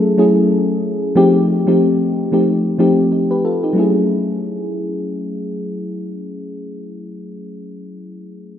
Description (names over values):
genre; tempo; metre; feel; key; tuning
R&B; 92 BPM; 4/4; swing 58% on 16ths; F# dorian; A4 = 441 Hz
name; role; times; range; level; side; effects
mellow FM electric piano; accompaniment; 0.0-8.6 s; F3 to B4; -15 LUFS; left 1 dB; chorus
room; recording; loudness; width
wet plate reverb, RT60 3.0 s; dreamy mix soaked in reverb; -14 LUFS; side -10 dB against mid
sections
0.0-3.8 A section; 3.8-6.4 B section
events
none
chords
0.0 F#m7; 1.2 F9; 3.8 F#m7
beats
0.50 | 1.16 1.81 2.46 3.11 | 3.76 4.42 5.07 5.72